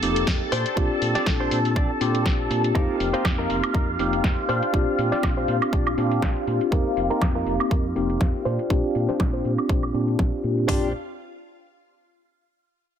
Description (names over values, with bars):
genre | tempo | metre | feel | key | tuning
filtered disco house | 121 BPM | 4/4 | swing 55% on 16ths | Bb major | A4 = 438 Hz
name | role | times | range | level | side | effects
bright tine electric piano | accompaniment | 0.0-10.9 s | Bb3 to G4 | -25 LUFS | left 1 dB | medium stereo tremolo, phaser, sidechain pumping, low-pass filter
phased string machine | sustained chords | 0.0-10.7 s | F4 to A5 | -29 LUFS | left 1 dB | ensemble chorus, phaser, sidechain pumping, low-pass filter
direct-recorded clean electric guitar | riff | 0.0-10.9 s | D4 to D5 | -30 LUFS | equal | analog chorus, sidechain pumping, low-pass filter
fingered electric bass | bass | 0.0-10.9 s | F1 to Bb2 | -28 LUFS | equal | tube saturation, sidechain pumping, low-pass filter
house drum kit | drums | 0.0-10.7 s | hi-hat, snare drum, woodblock | -30 LUFS | right 1 dB | sidechain pumping on hats, low-pass filter on hats, low-pass filter on snare, sidechain pumping on perc, low-pass filter on perc
house drum kit | drums | 0.3-10.8 s | hi-hat, kick drum, toms | -24 LUFS | equal | none
room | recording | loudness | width
light reverb, digital ambience | none | -20 LUFS | side -9 dB against mid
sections
0.0-10.7 A section; 10.7-12.7 B section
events
filter sweep on drum 0.0-10.7; filter sweep 0.0-10.7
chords
0.0 F7sus4; 0.5 Bb69; 2.8 F7sus4; 4.5 Bb69; 6.7 F7sus4; 8.5 Bb69